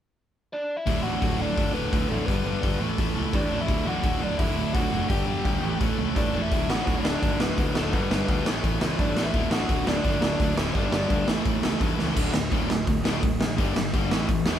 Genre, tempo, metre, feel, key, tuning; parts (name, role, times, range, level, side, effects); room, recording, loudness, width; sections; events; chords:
punk rock; 170 BPM; 4/4; straight; D major; A4 = 440 Hz
biting lead guitar; melody; 0.5-11.3 s; A3 to G5; -30 LUFS; equal; overdrive
distorted electric guitar; riff; 0.9-14.6 s; D2 to A3; -30 LUFS; left 6 dB; overdrive
sludgy distorted guitar; riff; 0.9-14.6 s; D2 to A3; -29 LUFS; right 5 dB; overdrive
modern bright picked electric bass; bass; 0.9-14.6 s; D1 to G2; -32 LUFS; equal
raw garage drum kit; drums; 0.9-14.5 s; crash cymbal, hi-hat, kick drum, snare drum; -26 LUFS; equal
light reverb; band playing live in one room; -22 LUFS; side -10 dB against mid
0.9-12.2 A section; 12.2-14.6 B section
drum fill 12.0
0.0 Dsus2; 0.9 D; 2.3 G; 2.8 A; 3.7 D; 5.1 G5; 5.6 A; 6.5 D; 7.9 G; 8.5 A; 9.3 D; 10.8 G5; 11.3 A; 12.2 D5; 13.6 G5